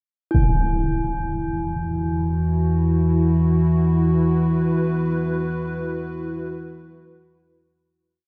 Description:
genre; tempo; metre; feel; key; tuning
dark ambient drone; free time; none; none; unclear; A4 = 440 Hz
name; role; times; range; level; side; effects
dark analog pad; sustained chords; 1.9-8.1 s; E4 to B4; -30 LUFS; equal; chorus
deep rumbling drone; drone; 1.3-8.2 s; E2 to E3; -22 LUFS; equal; built-in reverb
impact; percussion; 0.3-0.5 s; none; -25 LUFS; equal; low-pass filter on sfx
bronze singing bowl; texture; 0.3-8.1 s; E4; -32 LUFS; equal; none
room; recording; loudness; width
wet cathedral reverb, RT60 5.2 s; none; -21 LUFS; mono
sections
0.3-8.1 A section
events
fade-in on analog synth pad 0.3-8.1; fade-out 4.2-8.1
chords
0.3 Esus2

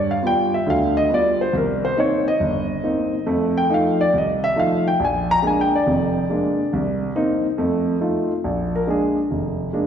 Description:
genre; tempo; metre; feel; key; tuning
jazz; 139 BPM; 4/4; swing 66% on 8ths; Bb mixolydian; A4 = 440 Hz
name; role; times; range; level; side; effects
warm grand piano; solo; 0.0-9.9 s; F1 to Bb5; -18 LUFS; equal; none
room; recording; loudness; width
wet concert hall reverb, RT60 2.0 s; recorded in a church or concert hall; -18 LUFS; side -8 dB against mid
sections
0.0-8.4 A section; 8.4-9.9 B section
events
grand piano solo 0.0-8.4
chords
0.0 G7; 1.5 Cm7; 3.3 F7; 5.0 Bb7; 6.7 Cm7; 7.6 F7; 8.4 Bb7

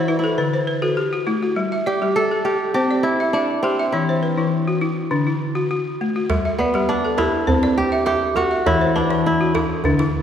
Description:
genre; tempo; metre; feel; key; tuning
west african traditional, West African string and xylophone music; 101 BPM; 4/4; straight; G major; A4 = 436 Hz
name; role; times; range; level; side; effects
kora; melody; 0.0-10.2 s; B3 to A4; -21 LUFS; right 1 dB; none
balafon; arpeggios; 0.0-10.2 s; D3 to E5; -20 LUFS; left 2 dB; none
djembe; percussion; 6.3-10.1 s; none; -24 LUFS; right 2 dB; none
room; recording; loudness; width
wet concert hall reverb, RT60 2.3 s; recorded in a church or concert hall; -17 LUFS; side -9 dB against mid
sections
0.0-6.3 A section; 6.3-10.2 A section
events
balafon fill 0.0-1.6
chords
0.4 D; 1.6 G5; 2.7 C; 3.9 E5; 5.1 D; 6.3 G5; 7.5 C; 8.7 E5

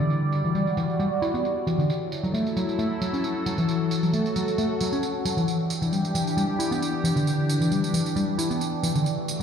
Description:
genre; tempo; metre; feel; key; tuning
breakbeat, breaks; 134 BPM; 4/4; swing 54% on 16ths; unclear; A4 = 440 Hz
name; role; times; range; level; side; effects
phased analog pad; sustained chords; 0.0-9.4 s; E3 to D5; -27 LUFS; equal; phaser, chorus, vintage 12-bit sampler grit
picked electric bass; riff; 0.0-9.4 s; D3 to E4; -25 LUFS; equal; low-pass filter, dub echo
tambourine; drums; 0.0-9.4 s; none; -35 LUFS; right 4 dB; low-pass filter on perc, low-pass filter on room
room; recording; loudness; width
wet digital room reverb, RT60 1.1 s, small room ambience; played on a big sound system in a bare room, large studio reverb; -22 LUFS; side -7 dB against mid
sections
0.0-9.4 A section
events
none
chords
0.0 Em7; 1.9 F#m7; 5.5 Em7

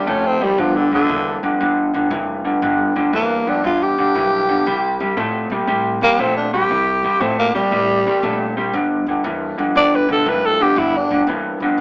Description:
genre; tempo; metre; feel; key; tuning
electric blues shuffle; 118 BPM; 4/4; swing 67% on 8ths; unclear; A4 = 440 Hz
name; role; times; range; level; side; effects
growling tenor saxophone; melody; 0.0-11.2 s; D3 to D5; -16 LUFS; equal; none
electric guitar through a small old amp; riff; 0.0-11.8 s; G2 to A3; -18 LUFS; equal; warbly pitch drift
upright bass; bass; 0.0-11.8 s; F1 to Bb2; -30 LUFS; equal; none
room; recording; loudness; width
moderate studio reverb, RT60 0.7 s; band playing live in one room, small speaker sound; -15 LUFS; side -26 dB against mid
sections
0.0-11.8 A section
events
tenor saxophone solo 0.0-11.8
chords
0.0 C5; 0.6 G6; 4.7 C5; 8.7 G5

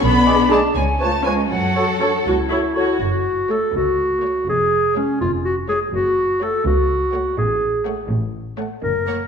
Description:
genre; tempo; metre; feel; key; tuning
cinematic, playful, whimsical film cue; 82 BPM (dotted quarters); 6/8; straight; F# minor; A4 = 440 Hz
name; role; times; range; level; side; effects
clear chamber violin section; melody; 0.0-9.2 s; C#5 to B5; -29 LUFS; left 2 dB; none
bright silver concert flute; second line; 0.0-2.3 s; F#5 to B5; -22 LUFS; left 1 dB; none
warm symphonic violin section; second line; 0.0-9.1 s; C#4 to C#5; -28 LUFS; left 3 dB; none
rich studio cello section; bass; 0.0-9.3 s; C#2 to B3; -24 LUFS; equal; none
rich studio double bass section; bass; 0.0-9.3 s; E#1 to F#2; -24 LUFS; right 2 dB; none
warm clarinet; second line; 0.3-9.3 s; C#4 to B4; -20 LUFS; left 1 dB; none
warm oboe; second line; 0.3-2.8 s; C#5 to D5; -26 LUFS; right 2 dB; none
mellow bassoon; accompaniment; 0.3-2.9 s; E#3 to G#3; -28 LUFS; right 1 dB; none
dark French horn section; sustained chords; 0.3-2.8 s; D4 to B4; -26 LUFS; left 2 dB; none
rich studio viola section; accompaniment; 0.5-9.1 s; G#3 to B4; -25 LUFS; right 1 dB; none
room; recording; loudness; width
wet recital hall reverb, RT60 1.4 s; minimal, uncompressed stereo recording; -16 LUFS; side -6 dB against mid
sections
0.0-3.0 A section; 3.0-9.3 B section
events
none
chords
0.0 G#dim/B; 0.8 C#7; 1.5 F#m; 4.5 C#/E#; 5.9 F#m; 7.4 F#m/A

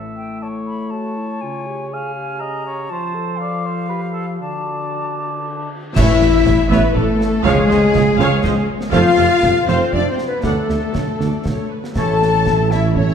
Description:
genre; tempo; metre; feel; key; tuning
cinematic, heroic adventure film score; 120 BPM; 3/4; straight; unclear; A4 = 440 Hz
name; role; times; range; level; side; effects
mellow clarinet; second line; 0.0-13.1 s; E4 to A5; -27 LUFS; equal; none
mellow cor anglais; second line; 0.0-5.7 s; A4 to E#5; -27 LUFS; right 2 dB; none
mellow French horn section; sustained chords; 0.0-13.1 s; C#3 to A4; -21 LUFS; left 6 dB; none
silver concert flute; second line; 0.2-13.1 s; G#4 to B5; -26 LUFS; left 3 dB; none
cymbal swell, clash cymbals and concert bass drum; percussion; 2.9-6.9 s; none; -22 LUFS; equal; none
warm symphonic violin section; melody; 6.0-13.1 s; G#4 to A5; -27 LUFS; left 4 dB; none
rich studio violin section; second line; 6.0-13.1 s; G#4 to A5; -26 LUFS; left 4 dB; none
warm symphonic viola section; accompaniment; 6.0-13.1 s; G4 to A5; -25 LUFS; right 2 dB; none
bright trombone section; sustained chords; 6.0-12.1 s; E3 to A3; -30 LUFS; right 3 dB; none
dark trumpet section; stabs; 6.0-12.1 s; C5 to D5; -30 LUFS; left 2 dB; none
dark tuba; bass; 6.0-13.1 s; F1 to D2; -22 LUFS; right 4 dB; none
rich symphonic double bass section; bass; 6.0-13.1 s; A1 to F2; -22 LUFS; right 4 dB; none
warm symphonic cello section; bass; 6.0-13.1 s; G#3 to A4; -24 LUFS; right 3 dB; none
concert snare drum, clash cymbals and concert bass drum; drums; 6.0-13.1 s; none; -25 LUFS; equal; none
timpani; percussion; 6.0-6.7 s; A2; -26 LUFS; left 2 dB; none
room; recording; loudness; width
wet concert hall reverb, RT60 2.3 s; dark, warm production; -15 LUFS; side -7 dB against mid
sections
0.0-6.0 A section; 6.0-13.1 B section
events
band accent 6.0-6.5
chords
0.0 A; 1.4 C#; 2.9 F; 4.4 D; 6.0 A; 7.4 C#; 8.9 F; 10.4 D; 12.0 A

